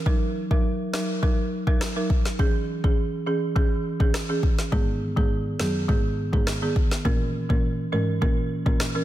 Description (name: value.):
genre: dancehall.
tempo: 103 BPM.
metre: 4/4.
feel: straight.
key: G# minor.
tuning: A4 = 440 Hz.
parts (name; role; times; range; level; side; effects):
folk marimba with medium hard mallets; accompaniment; 0.1-9.0 s; D#3 to A#4; -26 LUFS; right 2 dB; none.
afro-pop drum kit; drums; 0.1-8.9 s; kick drum, rim click, snare drum; -23 LUFS; equal; soft clipping on snare.
dark cello; bass; 4.7-8.8 s; F#2 to A#2; -28 LUFS; equal; none.
room: studio reverb.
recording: dense, heavily limited modern master.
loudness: -22 LUFS.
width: side -13 dB against mid.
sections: 0.0-9.0 A section.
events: none.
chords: 0.1 D#m; 2.4 C#m/E; 4.7 G#m; 7.1 A#dim.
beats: | 0.06 0.65 1.23 1.81 | 2.39 2.98 3.56 4.14 | 4.72 5.30 5.89 6.47 | 7.05 7.63 8.22 8.80.